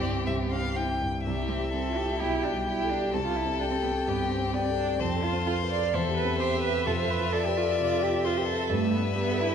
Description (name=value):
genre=quick classical-period movement for piano quartet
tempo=129 BPM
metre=4/4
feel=rubato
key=C major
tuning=A4 = 441 Hz
part: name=rich violin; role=melody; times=0.0-9.5 s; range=F4 to D5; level=-32 LUFS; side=left 9 dB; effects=none
part: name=rich violin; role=second line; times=0.0-9.5 s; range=D5 to A5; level=-34 LUFS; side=left 4 dB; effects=none
part: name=warm cello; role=second line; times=0.0-9.5 s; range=G3 to D5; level=-30 LUFS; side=right 6 dB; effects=none
part: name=warm concert grand piano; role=accompaniment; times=0.0-9.5 s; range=B1 to B4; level=-29 LUFS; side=equal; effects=none
room=wet recital hall reverb, RT60 1.6 s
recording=minimal, uncompressed stereo recording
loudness=-25 LUFS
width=side -7 dB against mid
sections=0.0-1.3 A section; 1.3-9.5 B section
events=none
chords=0.0 C; 2.2 G/B; 3.1 C5; 5.0 F; 5.9 C/E; 6.9 F; 8.7 G